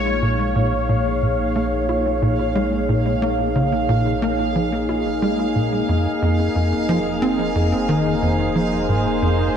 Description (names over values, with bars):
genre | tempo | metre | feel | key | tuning
ambient, sequencer-driven space music | 90 BPM | 4/4 | straight | Bb minor | A4 = 439 Hz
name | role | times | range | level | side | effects
sweeping resonant pad | sustained chords | 0.0-9.6 s | Bb3 to Db5 | -21 LUFS | left 1 dB | chorus
tight sequencer bass | riff | 0.0-9.5 s | F2 to F4 | -21 LUFS | equal | lush chorus, analog delay
warm sub bass | bass | 0.0-9.6 s | F1 to Bb1 | -28 LUFS | equal | none
bubbling stepped-filter texture | texture | 0.0-9.6 s | F5 | -27 LUFS | right 5 dB | chorus, built-in reverb
room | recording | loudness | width
wet lush hall reverb, RT60 2.7 s | dreamy mix soaked in reverb | -17 LUFS | side -8 dB against mid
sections
0.0-9.6 A section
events
none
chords
0.0 Bbm; 5.9 Fm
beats
| 0.56 1.22 1.89 2.56 | 3.22 3.89 4.55 5.22 | 5.89 6.55 7.22 7.89 | 8.55 9.22